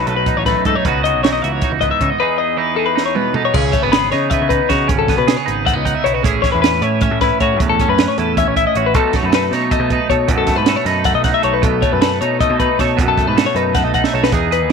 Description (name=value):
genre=math rock and midwest emo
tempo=312 BPM (eighths)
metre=7/8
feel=straight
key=unclear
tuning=A4 = 441 Hz
part: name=twelve-string electric guitar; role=accompaniment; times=0.0-14.7 s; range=E2 to B4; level=-19 LUFS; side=right 12 dB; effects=none
part: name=twelve-string electric guitar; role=arpeggios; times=0.0-14.7 s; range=G#4 to F#5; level=-17 LUFS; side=left 14 dB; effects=none
part: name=picked electric bass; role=bass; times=0.0-14.7 s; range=G#1 to C#3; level=-21 LUFS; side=equal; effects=none
part: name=compact cocktail drum kit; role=drums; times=0.1-14.7 s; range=crash cymbal, hi-hat, kick drum, snare drum, toms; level=-19 LUFS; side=right 3 dB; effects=none
room=light reverb, small room ambience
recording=1960s-style stereo with parts hard left and right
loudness=-13 LUFS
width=side -6 dB against mid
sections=0.0-3.5 A section; 3.5-14.3 B section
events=drum fill 3.0-3.5, 14.0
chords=0.0 B7; 0.8 C#m11; 2.2 Emaj7; 3.5 C#m11; 6.2 Amaj7; 8.9 B9